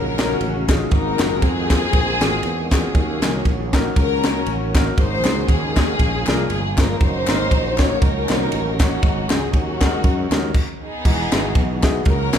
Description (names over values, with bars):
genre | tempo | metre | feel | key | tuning
uptempo gospel | 118 BPM | 4/4 | swing 55% on 8ths | unclear | A4 = 440 Hz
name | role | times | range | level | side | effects
warm studio string section | melody | 0.0-12.4 s | Cb4 to Db5 | -23 LUFS | left 2 dB | none
tonewheel organ | sustained chords | 0.0-12.4 s | Db3 to F5 | -28 LUFS | right 4 dB | slow rotary speaker, overdrive, chorus vibrato
sustaining fretless electric bass | bass | 0.0-12.4 s | E1 to Gb2 | -25 LUFS | equal | none
warm concert grand piano | accompaniment | 0.2-12.4 s | Ab2 to Db5 | -27 LUFS | left 3 dB | none
crisp fusion drum kit | drums | 0.2-12.4 s | crash cymbal, kick drum, ride cymbal, snare drum | -19 LUFS | equal | none
group handclap | percussion | 0.2-12.4 s | none | -33 LUFS | left 5 dB | none
room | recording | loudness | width
moderate recital hall reverb, RT60 1.4 s | recorded in a church or concert hall | -16 LUFS | side -8 dB against mid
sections
0.0-11.1 A section; 11.1-12.4 A section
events
stop 10.5-11.1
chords
0.0 Ebm11; 0.9 Ab13; 2.9 Ebm7; 5.0 Ab9sus4; 6.0 Bb7; 7.0 Ebm7/Gb; 9.0 Ab7sus4; 11.1 Emaj9